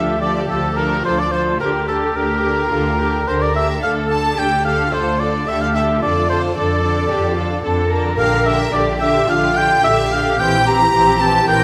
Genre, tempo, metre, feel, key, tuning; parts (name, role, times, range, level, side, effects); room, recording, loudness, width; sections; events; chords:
quick classical-period movement for symphony orchestra; 109 BPM; 4/4; rubato; D minor; A4 = 440 Hz
rich studio violin section; melody; 0.0-11.6 s; G4 to A4; -29 LUFS; equal
warm oboe; second line; 0.0-11.6 s; A4 to Bb5; -20 LUFS; equal
dark studio viola section; accompaniment; 0.0-11.6 s; D3 to D4; -25 LUFS; equal
warm studio cello section; bass; 0.0-11.6 s; F4 to Bb4; -26 LUFS; equal
warm studio double bass section; bass; 0.0-11.6 s; Bb1 to F2; -25 LUFS; equal
rich studio violin section; second line; 0.2-11.6 s; A4 to Bb5; -27 LUFS; equal
moderate concert hall reverb, RT60 1.7 s; -17 LUFS; mono
0.0-11.6 A section
0.0 Dm; 1.6 Gm/D; 3.8 Dm; 6.0 Dm/F; 8.2 Gm7/Bb; 10.4 C7/Bb